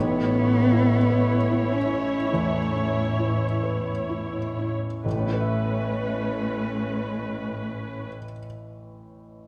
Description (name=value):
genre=cinematic, emotional film score for orchestra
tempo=41-54 BPM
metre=4/4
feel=rubato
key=A major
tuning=A4 = 440 Hz
part: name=dark cello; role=melody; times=0.0-8.1 s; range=A3 to C#4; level=-28 LUFS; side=equal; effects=none
part: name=felt-muted upright piano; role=accompaniment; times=0.0-9.5 s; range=A1 to E5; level=-32 LUFS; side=equal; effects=none
part: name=warm studio viola section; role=accompaniment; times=0.0-8.1 s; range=C#4 to C#5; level=-33 LUFS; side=equal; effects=none
part: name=concert harp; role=arpeggios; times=0.0-8.9 s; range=A2 to E5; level=-37 LUFS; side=equal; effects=none
part: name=dark studio cello section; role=bass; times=0.0-8.1 s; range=A2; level=-31 LUFS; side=equal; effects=none
room=light reverb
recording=none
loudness=-25 LUFS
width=mono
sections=0.0-5.0 A section; 5.0-9.5 B section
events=slowing down 0.0-5.0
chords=0.0 Aadd9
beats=1.11 2.33 3.62 | 5.05 6.43 7.82 9.22